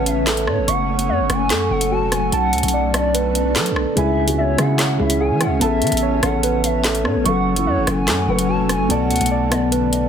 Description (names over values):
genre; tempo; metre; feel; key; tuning
hip hop, drill; 146 BPM; 4/4; half-time; unclear; A4 = 440 Hz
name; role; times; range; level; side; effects
gliding portamento lead; second line; 0.0-9.7 s; C#5 to A5; -25 LUFS; left 3 dB; chorus, tape echo
granular cloud pad; sustained chords; 0.0-10.1 s; C#3 to G#4; -25 LUFS; left 1 dB; built-in reverb
muted felt-like synth keys; arpeggios; 0.0-10.1 s; F#4 to C#6; -22 LUFS; right 5 dB; chorus, low-pass filter, tape echo
distorted 808-style bass; bass; 0.0-10.1 s; E1 to F#3; -23 LUFS; equal; distortion
downlifter; sound effects; 0.0-0.7 s; none; barely audible; none; none
drill drum kit; drums; 0.1-10.0 s; handclaps, hi-hat, rim click, snare drum; -22 LUFS; equal; none
felt-muted upright piano; accompaniment; 4.0-10.1 s; B2 to D5; -20 LUFS; left 1 dB; low-pass filter
room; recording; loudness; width
light reverb, digital ambience; dense, heavily limited modern master; -16 LUFS; side -8 dB against mid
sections
0.0-10.1 A section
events
none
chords
0.0 Aadd9; 0.7 F#m; 2.3 Bm7; 4.0 C#m; 5.6 Aadd9; 7.3 F#m; 8.9 Bm7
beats
0.27 | 0.68 1.09 1.50 1.91 | 2.32 2.73 3.15 3.56 | 3.97 4.38 4.79 5.20 | 5.61 6.02 6.43 6.84 | 7.26 7.67 8.08 8.49 | 8.90 9.31 9.72